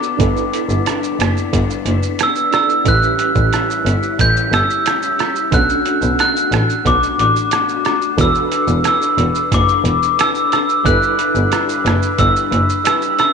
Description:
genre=indie pop, bedroom pop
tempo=90 BPM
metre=4/4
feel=straight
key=unclear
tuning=A4 = 440 Hz
part: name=electric guitar through a small old amp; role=accompaniment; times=0.0-13.3 s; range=G2 to B4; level=-23 LUFS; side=left 13 dB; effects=ensemble chorus, vibrato effect
part: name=reed electric piano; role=accompaniment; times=0.0-13.3 s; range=C#4 to D5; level=-25 LUFS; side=right 11 dB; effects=fast tremolo
part: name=lo-fi sampler-style drum kit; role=drums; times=0.0-13.3 s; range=hi-hat, kick drum, rim click, shaker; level=-21 LUFS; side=right 4 dB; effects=none
part: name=rich double bass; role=bass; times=0.2-12.6 s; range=E1 to B1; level=-18 LUFS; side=equal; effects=none
part: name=glockenspiel with soft plastic mallets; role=melody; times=2.2-13.3 s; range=D6 to G6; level=-16 LUFS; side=equal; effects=analog chorus, tape echo
room=light reverb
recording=1960s-style stereo with parts hard left and right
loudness=-13 LUFS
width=side -6 dB against mid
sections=0.0-13.3 A section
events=none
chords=0.2 G6; 2.9 A7; 5.5 Bm7; 8.2 E7sus4; 10.9 G6

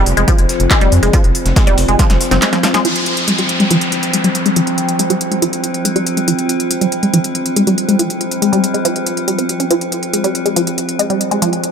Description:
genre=driving peak-time techno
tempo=140 BPM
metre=4/4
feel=straight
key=F minor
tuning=A4 = 439 Hz
part: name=gritty driven synth bass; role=bass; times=0.0-2.4 s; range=F1 to F2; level=-15 LUFS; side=equal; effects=sidechain pumping
part: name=metallic inharmonic drone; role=drone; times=0.0-11.7 s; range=F3 to C4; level=-19 LUFS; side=equal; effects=chorus, built-in reverb, phaser, sidechain pumping
part: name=breakbeat sampler-style drum kit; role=drums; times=0.1-2.7 s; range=hi-hat, snare drum, tambourine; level=-26 LUFS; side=equal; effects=sidechain pumping on perc, high-pass filter on perc, small room ambience, high-pass filter on snare, sidechain pumping on hats, high-pass filter on hats, high-pass filter on room
part: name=techno drum kit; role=drums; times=0.1-11.7 s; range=handclaps, hi-hat, snare drum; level=-19 LUFS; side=left 1 dB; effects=small room ambience
part: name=resonant blip pluck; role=riff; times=0.2-11.4 s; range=F3 to Db4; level=-16 LUFS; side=equal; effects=phaser, sidechain pumping, tape echo
part: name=electronic kick drum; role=drums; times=0.3-2.1 s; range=none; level=-13 LUFS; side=equal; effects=small room ambience
part: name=downlifter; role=sound effects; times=2.8-6.3 s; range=none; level=-21 LUFS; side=equal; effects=none
room=light reverb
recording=none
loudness=-12 LUFS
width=side -7 dB against mid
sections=0.0-2.8 A section; 2.8-11.7 B section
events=drop 0.0-2.8; drum fill 2.0-2.8; band accent 2.7; filter sweep on synth arpeggio sound 2.8-11.7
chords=0.0 F5

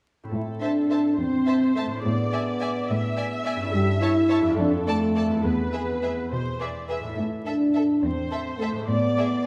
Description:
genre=cinematic, playful, whimsical film cue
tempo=70 BPM (dotted quarters)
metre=6/8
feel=straight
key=A minor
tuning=A4 = 438 Hz
part: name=concert harp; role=arpeggios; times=0.2-9.5 s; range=E2 to D5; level=-35 LUFS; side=equal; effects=none
part: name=warm studio viola section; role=accompaniment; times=0.3-9.5 s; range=A4 to E5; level=-34 LUFS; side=equal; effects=none
part: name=mellow French horn section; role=sustained chords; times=0.3-9.5 s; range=A3 to G4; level=-26 LUFS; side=equal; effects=none
part: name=rich studio cello section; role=bass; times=0.3-9.5 s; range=E2 to B2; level=-32 LUFS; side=equal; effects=none
part: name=warm studio violin section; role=melody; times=0.6-9.3 s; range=E5 to A5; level=-40 LUFS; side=equal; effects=none
part: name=warm studio violin section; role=second line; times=0.6-9.3 s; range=G#4 to E5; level=-37 LUFS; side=equal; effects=none
room=wet concert hall reverb, RT60 2.2 s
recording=vinyl crackle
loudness=-24 LUFS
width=mono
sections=0.3-9.5 A section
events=none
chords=0.3 Am; 2.0 E7/A; 3.7 A7/G; 4.6 Dm/F; 5.4 E; 7.2 Am; 8.9 E7/A

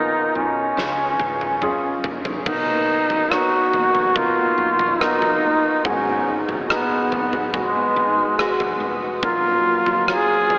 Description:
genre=pop ballad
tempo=71 BPM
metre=4/4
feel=straight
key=unclear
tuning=A4 = 440 Hz
part: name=warm duduk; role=melody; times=0.0-10.6 s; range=G#3 to G#4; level=-19 LUFS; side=equal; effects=none
part: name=warm baby grand piano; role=accompaniment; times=0.0-10.6 s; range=G#2 to C#5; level=-24 LUFS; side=equal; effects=lush chorus
part: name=woody fretless electric bass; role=bass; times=0.0-10.6 s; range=E#1 to C#2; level=-36 LUFS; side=equal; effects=none
part: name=huge arena drum kit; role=drums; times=0.8-10.6 s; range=crash cymbal, kick drum, rim click, snare drum, toms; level=-27 LUFS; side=equal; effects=none
part: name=fingerpicked acoustic archtop guitar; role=arpeggios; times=2.5-10.6 s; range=B2 to F#4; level=-29 LUFS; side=equal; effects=none
room=wet huge ambient reverb, RT60 8.0 s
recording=dreamy mix soaked in reverb, AM radio sound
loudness=-17 LUFS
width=side -28 dB against mid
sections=0.0-2.5 A section; 2.5-10.6 B section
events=drum fill 0.8-2.5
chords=0.0 Bmaj7; 0.8 C#7; 2.5 Bmaj7; 5.8 G#m7; 9.2 F#maj7/A#

